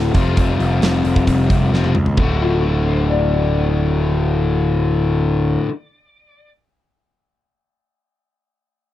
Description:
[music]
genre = classic rock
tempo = 133 BPM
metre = 4/4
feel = straight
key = unclear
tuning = A4 = 442 Hz
[part]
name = electric slide guitar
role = second line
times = 0.0-6.5 s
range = F4 to D5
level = -25 LUFS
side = left 6 dB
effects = none
[part]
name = distorted electric guitar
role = riff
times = 0.0-5.7 s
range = D2 to F#4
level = -20 LUFS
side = left 5 dB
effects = distortion
[part]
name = fuzz picked electric bass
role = bass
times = 0.0-5.6 s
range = D1 to C#2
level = -17 LUFS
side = right 1 dB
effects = overdrive
[part]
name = huge arena drum kit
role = drums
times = 0.1-2.3 s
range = hi-hat, kick drum, snare drum, toms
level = -19 LUFS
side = right 1 dB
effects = none
[sound]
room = little or no reverb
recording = dry, close 1970s-style studio recording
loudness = -15 LUFS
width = side -13 dB against mid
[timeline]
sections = 0.0-2.2 A section; 2.2-5.8 B section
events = drum fill 1.7-2.2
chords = 0.2 Fadd9; 2.2 D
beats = | 0.38 0.83 1.28 1.73 | 2.18 2.63 3.08 3.53 | 3.98 4.43 4.88 5.33

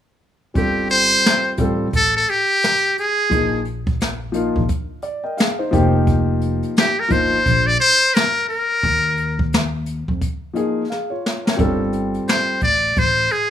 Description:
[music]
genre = hip hop, jazz-hop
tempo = 87 BPM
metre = 4/4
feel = swing 61% on 16ths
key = G minor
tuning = A4 = 440 Hz
[part]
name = dark grand piano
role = accompaniment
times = 0.5-12.6 s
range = F3 to G5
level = -21 LUFS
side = left 2 dB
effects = none
[part]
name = trumpet with metal mute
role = melody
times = 0.6-13.5 s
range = G4 to D5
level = -16 LUFS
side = equal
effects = none
[part]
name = upright bass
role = bass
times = 0.6-13.3 s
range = F1 to F2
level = -23 LUFS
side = equal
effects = none
[part]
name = jazz brush drum kit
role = drums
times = 0.6-13.5 s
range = hi-hat, kick drum, snare drum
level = -21 LUFS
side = equal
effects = none
[sound]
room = studio reverb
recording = rough home demo mix, small room ambience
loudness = -16 LUFS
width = side -10 dB against mid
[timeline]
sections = 0.6-13.5 A section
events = grand piano fill 4.7-6.1; drum fill 10.9-11.6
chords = 0.6 G9sus4; 3.3 Bb7sus4; 5.7 F9sus4; 8.8 Ebsus24; 11.6 G9sus4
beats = | 0.56 1.25 1.93 2.62 | 3.31 4.00 4.69 5.38 | 6.07 6.76 7.45 8.14 | 8.83 9.52 10.21 10.90 | 11.59 12.28 12.97

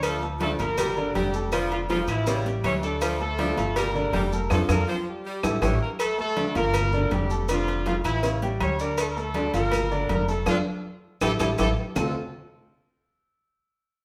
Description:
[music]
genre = latin, salsa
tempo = 161 BPM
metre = 4/4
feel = straight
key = D minor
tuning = A4 = 436 Hz
[part]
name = warm horn section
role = melody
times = 0.0-12.1 s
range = E3 to C#5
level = -31 LUFS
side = equal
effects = none
[part]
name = edgy saxophone section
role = second line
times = 0.0-5.8 s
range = E3 to G3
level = -34 LUFS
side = equal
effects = none
[part]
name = warm grand piano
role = accompaniment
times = 0.0-12.1 s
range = C#3 to D6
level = -32 LUFS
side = equal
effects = none
[part]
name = upright bass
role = bass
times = 0.0-12.1 s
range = F1 to F2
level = -31 LUFS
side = equal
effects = none
[part]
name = agogo bells and timbales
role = percussion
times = 0.0-12.0 s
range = none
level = -36 LUFS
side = equal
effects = none
[part]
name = claves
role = percussion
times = 0.0-12.0 s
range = none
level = -41 LUFS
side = equal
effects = none
[part]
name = congas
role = percussion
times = 0.0-12.0 s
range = none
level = -36 LUFS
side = equal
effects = none
[part]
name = cowbell and bongos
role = percussion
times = 0.0-12.0 s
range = none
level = -36 LUFS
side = equal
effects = none
[part]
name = maracas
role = percussion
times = 0.0-12.0 s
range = none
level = -44 LUFS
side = equal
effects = none
[sound]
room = wet large studio reverb, RT60 1.1 s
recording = band playing live in one room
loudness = -25 LUFS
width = mono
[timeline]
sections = 0.0-6.0 A section; 6.0-12.0 B section; 12.0-13.4 C section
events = band accent 4.5-6.0, 10.5-12.0; drum fill 11.0-12.0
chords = 0.0 Dm; 0.8 Gm7; 1.5 F6; 2.3 A7; 3.0 Dm; 3.8 Gm7; 4.5 F6; 5.3 A7; 6.0 Dm; 6.7 Gm7; 7.5 F6; 8.2 A7; 9.0 Dm; 9.7 Gm7; 10.5 F6; 11.2 A5; 12.0 Dm7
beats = | 0.03 0.41 0.78 1.15 | 1.52 1.90 2.27 2.64 | 3.02 3.39 3.76 4.13 | 4.51 4.88 5.25 5.63 | 6.00 6.37 6.75 7.12 | 7.49 7.86 8.24 8.61 | 8.98 9.35 9.73 10.10 | 10.47 10.84 11.22 11.59 | 11.96

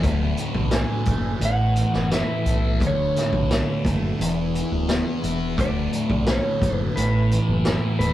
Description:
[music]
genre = psychedelic rock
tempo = 87 BPM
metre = 4/4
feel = straight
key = D lydian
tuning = A4 = 440 Hz
[part]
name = tonewheel organ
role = sustained chords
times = 0.0-8.1 s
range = E3 to B4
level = -36 LUFS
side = right 3 dB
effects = slow rotary speaker, chorus vibrato
[part]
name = thick fuzz guitar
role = riff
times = 0.0-8.1 s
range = D2 to A4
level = -24 LUFS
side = equal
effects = distortion, phaser
[part]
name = growling fingered electric bass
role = bass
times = 0.0-8.1 s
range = D1 to B1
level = -25 LUFS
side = equal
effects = overdrive
[part]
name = vintage drum kit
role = drums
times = 0.0-8.1 s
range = hi-hat, kick drum, snare drum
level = -26 LUFS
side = equal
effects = none
[part]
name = clean lap steel guitar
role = melody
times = 0.7-8.1 s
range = B4 to G#5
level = -28 LUFS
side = right 1 dB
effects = none
[sound]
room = wet small room reverb, RT60 0.5 s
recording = rough rehearsal-room recording, tube saturation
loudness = -20 LUFS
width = side -13 dB against mid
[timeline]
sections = 0.0-8.1 A section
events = none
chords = 0.0 D6; 1.4 Asus2; 2.8 D6; 4.2 E7; 5.6 D6; 7.0 Asus2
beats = | 0.04 0.73 1.42 2.12 | 2.81 3.50 4.19 4.88 | 5.58 6.27 6.96 7.66

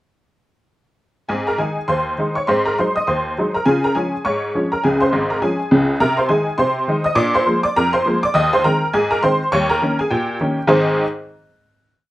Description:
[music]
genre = ragtime piano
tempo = 102 BPM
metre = 2/4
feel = swing 59% on 16ths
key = Ab major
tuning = A4 = 440 Hz
[part]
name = honky-tonk upright piano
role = solo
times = 1.3-11.0 s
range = Ab1 to Eb6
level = -15 LUFS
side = equal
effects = none
[sound]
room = light reverb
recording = none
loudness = -15 LUFS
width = side -16 dB against mid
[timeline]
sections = 1.3-10.7 A section; 10.7-11.9 final chord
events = none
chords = 1.3 Ab; 2.5 Ab7; 3.6 Db; 6.0 Ab/C; 7.2 Bb7; 8.3 Ab/Eb; 9.5 Eb7; 10.7 Ab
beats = | 1.29 1.88 | 2.47 3.06 | 3.65 4.24 | 4.83 5.41 | 6.00 6.58 | 7.17 7.75 | 8.34 8.93 | 9.52 10.10 | 10.70

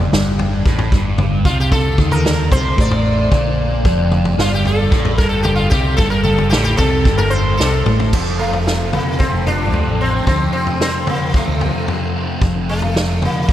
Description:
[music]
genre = psychedelic rock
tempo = 112 BPM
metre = 4/4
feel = straight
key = F mixolydian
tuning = A4 = 440 Hz
[part]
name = fuzz guitar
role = riff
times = 0.0-13.5 s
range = F2 to C4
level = -21 LUFS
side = equal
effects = distortion, phaser
[part]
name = fingered electric bass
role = bass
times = 0.0-13.3 s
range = F1 to Eb2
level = -19 LUFS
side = equal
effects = none
[part]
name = vintage drum kit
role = drums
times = 0.1-13.5 s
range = crash cymbal, kick drum, snare drum, toms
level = -18 LUFS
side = equal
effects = none
[part]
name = sitar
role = melody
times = 1.5-13.5 s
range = A3 to D5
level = -20 LUFS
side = equal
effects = analog delay
[sound]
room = moderate huge ambient reverb, RT60 7.6 s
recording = dreamy mix soaked in reverb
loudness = -13 LUFS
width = side -12 dB against mid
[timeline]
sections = 0.0-8.1 A section; 8.1-13.5 B section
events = sitar solo 0.0-8.1; drum fill 7.6-8.1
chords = 0.0 F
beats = 0.13 0.66 1.20 | 1.73 2.26 2.79 3.33 | 3.86 4.39 4.93 5.46 | 6.00 6.53 7.07 7.60 | 8.14 8.67 9.21 9.74 | 10.28 10.81 11.35 11.88 | 12.42 12.95 13.49

